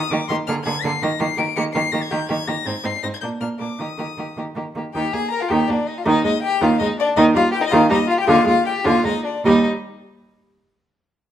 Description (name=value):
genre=quick classical-period movement for string quartet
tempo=107 BPM (dotted quarters)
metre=6/8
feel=rubato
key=Eb major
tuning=A4 = 441 Hz
part: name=rich violin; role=melody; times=0.0-9.7 s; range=D5 to D7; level=-23 LUFS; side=left 7 dB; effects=none
part: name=rich violin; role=second line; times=0.1-9.7 s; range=D4 to Bb4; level=-25 LUFS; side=left 3 dB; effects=none
part: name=warm viola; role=accompaniment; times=0.1-9.7 s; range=D3 to C4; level=-22 LUFS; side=right 1 dB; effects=none
part: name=rich cello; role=bass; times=0.1-9.7 s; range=Eb2 to Eb3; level=-23 LUFS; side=right 3 dB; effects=none
room=wet stone room reverb, RT60 1.2 s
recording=none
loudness=-17 LUFS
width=side -10 dB against mid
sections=0.0-4.9 A section; 4.9-9.4 B section; 9.4-10.6 C section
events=slowing down 6.6-9.4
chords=0.5 Bb7/D; 1.0 Eb; 2.7 Ab; 3.2 Bb; 3.8 Eb; 6.1 Ab5/Eb; 7.2 Eb; 8.3 Ebmaj9; 9.4 Eb